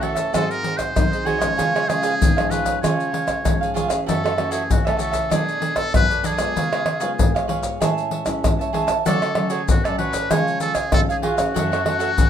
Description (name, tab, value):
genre	samba and choro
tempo	96 BPM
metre	4/4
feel	straight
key	unclear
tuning	A4 = 439 Hz
part	trumpet with metal mute	melody	0.0-12.3 s	F#4 to C#5	-24 LUFS	left 1 dB	none
part	cavaquinho	accompaniment	0.0-12.1 s	D4 to A5	-25 LUFS	right 4 dB	none
part	nylon-string guitar	accompaniment	0.0-12.3 s	F#2 to E#4	-28 LUFS	left 2 dB	none
part	pandeiro, maracas, surdo and tamborim	percussion	0.0-12.3 s	none	-21 LUFS	left 1 dB	none
room	moderate studio reverb, RT60 0.6 s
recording	minimal, uncompressed stereo recording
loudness	-18 LUFS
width	side -9 dB against mid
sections	0.0-12.3 A section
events	none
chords	0.3 G#7; 1.6 C#; 4.1 F#m7; 5.3 Bm7; 6.6 C#7; 7.8 Amaj7; 9.1 Dmaj7; 10.3 C#; 11.6 F#m7